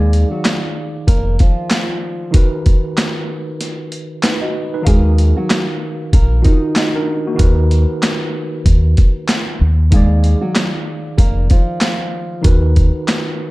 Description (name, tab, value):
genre	hip hop, boom-bap hip-hop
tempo	95 BPM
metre	4/4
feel	swing 58% on 16ths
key	unclear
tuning	A4 = 440 Hz
part	nylon-string guitar	melody	0.0-12.4 s	F3 to Eb5	-22 LUFS	equal	high-pass filter, low-pass filter, analog delay
part	tine electric piano	accompaniment	0.0-13.5 s	Eb3 to F5	-22 LUFS	right 1 dB	overdrive, fast stereo tremolo, cassette tape, high-pass filter, low-pass filter
part	deep dub fingered electric bass	bass	0.0-12.9 s	F1 to Eb2	-13 LUFS	equal	none
part	boom bap sampler-style drum kit	drums	0.1-13.3 s	handclaps, hi-hat, kick drum, snare drum	-14 LUFS	equal	none
room	little or no reverb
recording	dark, warm production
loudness	-13 LUFS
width	side -20 dB against mid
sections	0.0-13.5 A section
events	break 3.6-4.9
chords	0.0 Bb7/Eb; 2.3 Bmaj7/D#; 4.9 Ebmadd9; 7.4 Bmaj7/D#; 9.6 Bb7/Eb; 12.4 Bmaj7/D#